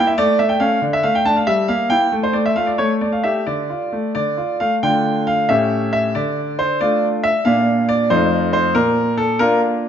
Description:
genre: classical-period piano sonatina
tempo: 92 BPM (dotted quarters)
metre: 6/8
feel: rubato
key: D minor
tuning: A4 = 439 Hz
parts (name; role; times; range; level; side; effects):
- bright grand piano; solo; 0.0-9.9 s; F2 to A5; -15 LUFS; equal; none
room: wet recital hall reverb, RT60 1.4 s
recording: nothing above 7.9 kHz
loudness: -15 LUFS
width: side -8 dB against mid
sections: 0.0-4.8 A section; 4.8-9.9 B section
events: none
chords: 0.2 A; 0.8 D5; 1.5 Edim/G; 2.1 Amadd11; 2.8 A7b13; 3.5 Dm; 5.5 A7; 6.1 Dm; 7.5 Bb; 8.1 F7; 8.8 Bb

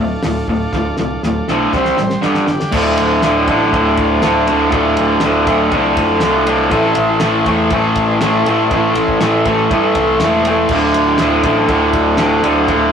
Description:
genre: garage rock duo or trio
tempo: 120 BPM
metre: 4/4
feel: straight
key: D minor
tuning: A4 = 440 Hz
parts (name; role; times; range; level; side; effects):
- combo organ; sustained chords; 0.0-12.9 s; C4 to E5; -23 LUFS; right 1 dB; none
- raw garage guitar; riff; 0.0-12.9 s; D2 to C4; -13 LUFS; equal; overdrive
- growling picked electric bass; bass; 0.0-12.9 s; D1 to A2; -24 LUFS; equal; overdrive, tube saturation
- cloth-damped thuddy drum kit; drums; 0.2-12.8 s; crash cymbal, hi-hat, kick drum, ride cymbal, snare drum; -23 LUFS; equal; none
room: moderate studio reverb, RT60 0.6 s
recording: rough rehearsal-room recording, warm saturation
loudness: -12 LUFS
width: side -7 dB against mid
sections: 0.0-2.7 A section; 2.7-12.9 B section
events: drum fill 0.7-2.7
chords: 0.0 Dm; 1.7 C5; 2.2 G5; 2.7 Dm; 6.7 Am; 10.7 Dm

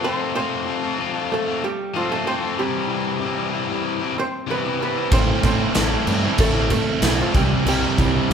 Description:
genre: quiet-loud alternative rock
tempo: 94 BPM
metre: 4/4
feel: straight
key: unclear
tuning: A4 = 440 Hz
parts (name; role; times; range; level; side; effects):
- archtop guitar, miked and amplified; melody; 0.0-8.3 s; E3 to C5; -26 LUFS; right 2 dB; none
- cranked stack guitar; riff; 0.0-8.3 s; A2 to F4; -23 LUFS; left 4 dB; overdrive
- thick fuzz guitar; riff; 5.1-8.3 s; A2 to E4; -22 LUFS; right 7 dB; distortion
- growling fingered electric bass; bass; 5.1-8.3 s; A1 to A2; -24 LUFS; right 1 dB; overdrive
- big rock drum kit; drums; 5.1-8.3 s; crash cymbal, kick drum, snare drum; -21 LUFS; equal; none
room: wet large studio reverb, RT60 1.3 s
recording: band playing live in one room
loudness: -18 LUFS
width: side -7 dB against mid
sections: 0.0-8.3 A section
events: none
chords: 0.0 F; 2.6 C; 5.1 Am; 7.3 C

